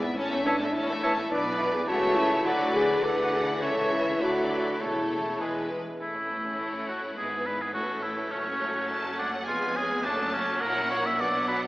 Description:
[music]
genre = quick classical-period movement for symphony orchestra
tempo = 104 BPM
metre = 2/4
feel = rubato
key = A major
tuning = A4 = 440 Hz
[part]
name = warm studio violin section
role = melody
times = 0.0-11.7 s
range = A4 to A5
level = -36 LUFS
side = equal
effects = none
[part]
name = rich studio violin section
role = second line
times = 0.0-11.7 s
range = G#3 to D5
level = -37 LUFS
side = left 1 dB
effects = none
[part]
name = rich studio viola section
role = accompaniment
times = 0.0-11.7 s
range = E3 to C#4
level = -35 LUFS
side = equal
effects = none
[part]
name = warm French horn section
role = sustained chords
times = 0.0-5.7 s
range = B3 to A4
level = -28 LUFS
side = left 1 dB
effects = none
[part]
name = warm studio cello section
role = bass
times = 0.0-11.7 s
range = E2 to D3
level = -38 LUFS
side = right 1 dB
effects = none
[part]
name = warm studio double bass section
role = bass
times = 0.0-11.7 s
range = E1 to D2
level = -41 LUFS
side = right 1 dB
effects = none
[part]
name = mellow hollow silver concert flute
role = second line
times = 0.5-5.7 s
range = E5 to B5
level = -33 LUFS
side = equal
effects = none
[part]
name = warm clarinet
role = second line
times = 0.5-5.7 s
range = A4 to D5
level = -36 LUFS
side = equal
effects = none
[part]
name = warm oboe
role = second line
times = 0.5-11.6 s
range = C#4 to E5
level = -30 LUFS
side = equal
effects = none
[part]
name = mellow bassoon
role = accompaniment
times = 0.5-6.0 s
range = C#3 to G#3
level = -36 LUFS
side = equal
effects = none
[sound]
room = wet concert hall reverb, RT60 2.2 s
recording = AM radio sound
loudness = -25 LUFS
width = side -18 dB against mid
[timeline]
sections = 0.0-6.0 A section; 6.0-11.7 B section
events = none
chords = 0.2 A; 1.3 E5/B; 1.9 A/C#; 2.5 Bm/D; 3.0 E7/D; 3.6 A/C#; 4.2 Bm7/D; 4.8 A/E; 5.4 E; 6.0 A; 7.2 E7/G#; 7.7 A; 8.3 F#m; 9.5 C#7/E#; 10.1 F#m; 10.6 F#7/A#

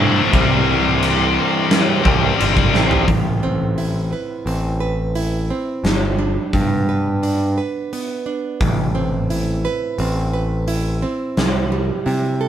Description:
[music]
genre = quiet-loud alternative rock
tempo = 87 BPM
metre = 4/4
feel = straight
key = A minor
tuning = A4 = 442 Hz
[part]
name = overdriven semi-hollow guitar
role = riff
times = 0.0-3.1 s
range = A2 to E4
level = -21 LUFS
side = right 4 dB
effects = none
[part]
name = tight distorted guitar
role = riff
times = 0.0-3.1 s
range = A2 to C4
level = -18 LUFS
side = left 7 dB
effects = distortion
[part]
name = growling picked electric bass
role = bass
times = 0.0-12.5 s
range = G1 to C3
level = -20 LUFS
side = equal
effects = overdrive
[part]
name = big rock drum kit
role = drums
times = 0.3-12.2 s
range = crash cymbal, hi-hat, kick drum, snare drum, toms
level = -20 LUFS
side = right 1 dB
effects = none
[part]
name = picked plugged-in old ladder-braced acoustic guitar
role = arpeggios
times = 3.1-12.5 s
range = A2 to B4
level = -24 LUFS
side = right 4 dB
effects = none
[sound]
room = light reverb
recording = band playing live in one room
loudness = -16 LUFS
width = side -10 dB against mid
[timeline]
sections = 0.0-3.1 A section; 3.1-12.5 B section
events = drum fill 2.7-3.1; half time 3.1-12.5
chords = 0.3 C; 3.1 Amadd9; 5.8 G; 8.6 Amadd9; 11.4 C

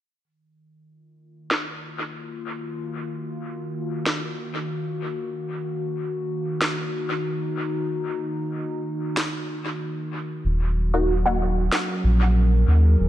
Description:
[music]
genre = ambient dub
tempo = 94 BPM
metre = 4/4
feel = swing 54% on 16ths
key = Eb minor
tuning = A4 = 440 Hz
[part]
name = warbly tape-like pad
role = sustained chords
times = 1.6-13.1 s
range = Eb3 to Bb4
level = -28 LUFS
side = equal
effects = chorus, built-in reverb, vintage 12-bit sampler grit
[part]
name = electronic snare drum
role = drums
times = 1.5-11.9 s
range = none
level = -28 LUFS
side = equal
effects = low-pass filter on snare, dub echo
[part]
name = round analog bass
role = bass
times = 10.4-13.1 s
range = Eb1 to Eb2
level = -18 LUFS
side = equal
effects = none
[part]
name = filtered dub chord stab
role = stabs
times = 10.9-11.4 s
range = Bb3 to Gb4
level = -25 LUFS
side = equal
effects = phaser, ensemble chorus, dub echo
[sound]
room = light reverb, digital ambience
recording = none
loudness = -23 LUFS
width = side -13 dB against mid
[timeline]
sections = 0.2-13.1 A section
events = fade-in on ambient pad 0.2-13.1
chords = 0.2 Ebm; 10.4 Gb6/Eb

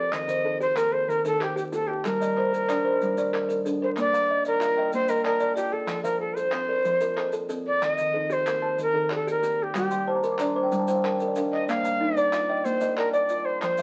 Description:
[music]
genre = southern african traditional, mbira-style interlocking cycle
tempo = 124 BPM (dotted quarters)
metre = 12/8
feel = straight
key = Bb major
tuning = A4 = 437 Hz
[part]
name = bright Native American-style cedar flute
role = melody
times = 0.0-13.8 s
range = G4 to F5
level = -27 LUFS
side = equal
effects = none
[part]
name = kalimba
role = arpeggios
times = 0.0-13.8 s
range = Eb3 to Bb5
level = -31 LUFS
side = equal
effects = none
[part]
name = kalimba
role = arpeggios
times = 0.0-13.8 s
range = Eb3 to D6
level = -35 LUFS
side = equal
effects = none
[part]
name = group handclap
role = percussion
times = 0.1-13.8 s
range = none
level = -38 LUFS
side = equal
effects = none
[part]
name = maracas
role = percussion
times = 0.1-13.8 s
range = none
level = -52 LUFS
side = equal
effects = none
[sound]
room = moderate studio reverb, RT60 0.6 s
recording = very old 78 rpm record, vinyl crackle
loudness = -25 LUFS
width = mono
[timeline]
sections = 0.0-4.0 A section; 4.0-13.8 B section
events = kalimba fill 9.8-11.7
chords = 0.1 Eb; 2.0 Gm; 4.0 Bb; 5.9 F; 7.8 Eb; 9.8 Gm; 11.7 Bb

